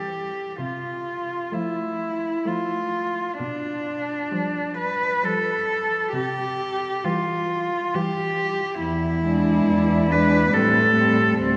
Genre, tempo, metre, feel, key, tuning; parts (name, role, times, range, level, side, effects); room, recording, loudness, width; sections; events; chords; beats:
classical, lyrical piece for cello ensemble; 63-70 BPM; 3/4; rubato; C major; A4 = 441 Hz
warm cello; melody; 0.0-11.6 s; C4 to B4; -25 LUFS; equal
dark cello; second line; 0.0-11.4 s; G3 to D4; -32 LUFS; equal
warm cello; accompaniment; 0.0-11.4 s; E3 to G#3; -29 LUFS; equal
dark cello; bass; 0.6-11.6 s; D2 to C3; -28 LUFS; equal
wet church reverb, RT60 3.4 s; recorded in a church or concert hall; -23 LUFS; mono
0.0-11.6 A section
0.0 C (rootless); 0.6 F/C; 3.4 G7/B; 6.1 C; 8.8 E7; 10.5 Am7
| 0.58 1.51 2.46 | 3.39 4.32 5.24 | 6.13 7.04 7.93 | 8.80 9.66 10.53 | 11.39